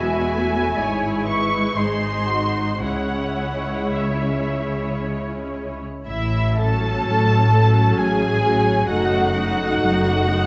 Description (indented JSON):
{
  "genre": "classical, slow romantic movement for string orchestra",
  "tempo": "53-67 BPM",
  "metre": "3/4",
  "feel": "rubato",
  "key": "C# minor",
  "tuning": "A4 = 440 Hz",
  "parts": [
    { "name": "muted symphonic violin section", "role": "melody", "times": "0.0-10.5 s", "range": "E5 to C#6", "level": "-26 LUFS", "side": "equal", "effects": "none" },
    { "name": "muted symphonic violin section", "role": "second line", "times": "0.0-10.5 s", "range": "E4 to E5", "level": "-28 LUFS", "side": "equal", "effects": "none" },
    { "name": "muted symphonic viola section", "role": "accompaniment", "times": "0.0-10.5 s", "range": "F#3 to F#4", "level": "-27 LUFS", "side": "equal", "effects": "none" },
    { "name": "muted symphonic cello section", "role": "bass", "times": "0.0-10.5 s", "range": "E2 to C#3", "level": "-27 LUFS", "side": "equal", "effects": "none" },
    { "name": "muted symphonic double bass section", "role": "bass", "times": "0.0-10.5 s", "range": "E1 to C#2", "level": "-28 LUFS", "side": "equal", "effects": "none" }
  ],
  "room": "wet recital hall reverb, RT60 1.4 s",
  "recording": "nothing above 7.8 kHz",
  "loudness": "-20 LUFS",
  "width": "mono",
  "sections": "0.0-6.1 A section; 6.1-10.5 B section",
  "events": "none",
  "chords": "0.0 E; 0.8 C#m/G#; 1.8 G#; 2.8 C#m; 6.1 A6; 8.9 D#dim/F#",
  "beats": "0.80 1.77 | 2.83 3.95 5.00 | 6.07 7.07 7.98 | 8.89 9.82"
}